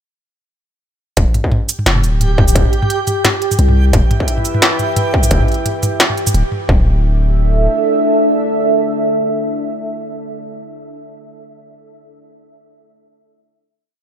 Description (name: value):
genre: half-time drum and bass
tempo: 174 BPM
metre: 4/4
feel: swing 56% on 16ths, half-time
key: unclear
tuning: A4 = 441 Hz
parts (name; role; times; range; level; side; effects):
- long sustained 808-style bass; bass; 1.2-7.7 s; D1 to C2; -13 LUFS; equal; tube saturation
- electronic kick drum; drums; 1.2-6.8 s; none; -14 LUFS; equal; distortion, small room reverb
- industrial drum kit; drums; 1.2-6.6 s; hi-hat, shaker, snare drum, toms; -16 LUFS; equal; small room reverb
- backwards swelling texture; texture; 2.2-5.3 s; G4; -22 LUFS; right 1 dB; built-in reverb
- deep dark ambient pad; sustained chords; 4.2-10.2 s; D4 to E5; -17 LUFS; right 1 dB; chorus, built-in reverb, sidechain pumping
room: light reverb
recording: none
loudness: -12 LUFS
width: side -8 dB against mid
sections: 1.2-6.7 drop; 6.7-9.4 final chord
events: drop 1.2-6.7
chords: 1.2 N.C.; 3.9 Em; 6.7 D5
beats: | 1.17 1.52 1.86 2.21 | 2.55 2.90 3.24 3.59 | 3.93 4.28 4.62 4.97 | 5.31 5.66 6.00 6.34 | 6.69 7.04 7.38 7.72 | 8.07 8.41 8.76 9.10